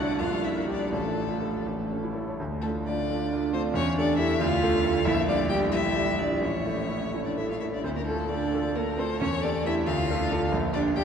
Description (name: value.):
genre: quick classical-period movement for piano trio.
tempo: 80-93 BPM (dotted quarters).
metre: 6/8.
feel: rubato.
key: D minor.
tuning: A4 = 441 Hz.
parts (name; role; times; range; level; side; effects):
rich violin; melody; 0.0-11.0 s; A4 to G5; -31 LUFS; left 5 dB; none.
warm cello; second line; 0.0-11.0 s; A3 to G4; -29 LUFS; right 3 dB; none.
warm concert grand piano; accompaniment; 0.0-11.0 s; A1 to D5; -27 LUFS; equal; none.
room: wet cathedral reverb, RT60 6.3 s.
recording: dark, warm production.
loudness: -24 LUFS.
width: side -7 dB against mid.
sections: 0.0-2.4 A section; 2.4-11.0 B section.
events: none.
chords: 0.2 Gm/Bb; 0.9 Dm/A; 1.7 A; 2.4 Dm; 3.8 A5/E; 4.4 Dm; 5.1 Gm/Bb; 6.4 A; 7.8 Dm; 9.2 A5/E; 9.9 Dm; 10.5 Gm/Bb.